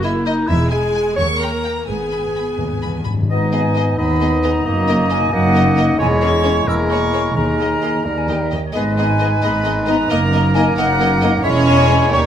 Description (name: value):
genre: quick classical-period movement for symphony orchestra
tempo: 88 BPM (dotted quarters)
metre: 6/8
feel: straight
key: G# minor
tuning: A4 = 443 Hz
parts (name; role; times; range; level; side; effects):
- rich chamber violin section; melody; 0.0-12.3 s; C#5 to B5; -27 LUFS; left 2 dB; none
- rich chamber violin section; second line; 0.0-12.3 s; G4 to C#6; -28 LUFS; left 2 dB; none
- warm clarinet; second line; 0.0-12.3 s; D#4 to C#5; -23 LUFS; left 1 dB; none
- rich studio viola section; accompaniment; 0.0-12.3 s; G#3 to C#4; -25 LUFS; right 2 dB; none
- rich chamber cello section; bass; 0.0-12.3 s; D#2 to G#2; -22 LUFS; right 1 dB; none
- rich chamber double bass section; bass; 0.0-12.3 s; E1 to D#2; -22 LUFS; right 2 dB; none
- timpani; percussion; 1.9-3.3, 7.3-8.0 s; G#2 to D#3; -24 LUFS; left 2 dB; none
- bright oboe; second line; 3.3-12.3 s; A#4 to D#5; -24 LUFS; right 2 dB; none
- small flute group; second line; 3.3-12.2 s; C#5 to E6; -21 LUFS; left 2 dB; none
- warm bassoon; accompaniment; 3.3-12.3 s; G3 to B3; -24 LUFS; right 2 dB; none
- dark French horn section; sustained chords; 3.3-12.0 s; G#3 to G#4; -22 LUFS; left 5 dB; none
room: wet recital hall reverb, RT60 1.4 s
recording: none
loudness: -14 LUFS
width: side -9 dB against mid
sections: 0.0-3.3 A section; 3.3-12.3 A section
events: timpani fill 1.9-3.3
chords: 0.5 E; 1.2 D#; 1.9 G#m; 4.7 D#m/F#; 6.0 C#m/E; 6.7 A#m7b5/E; 7.4 D#sus4; 8.1 D#; 8.8 G#m; 10.1 D#m/F#; 11.4 C#m/E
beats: | 0.49 1.17 | 1.88 2.59 | 3.30 3.98 | 4.66 5.32 | 5.99 6.67 | 7.36 8.05 | 8.75 9.44 | 10.11 10.77 | 11.44 12.12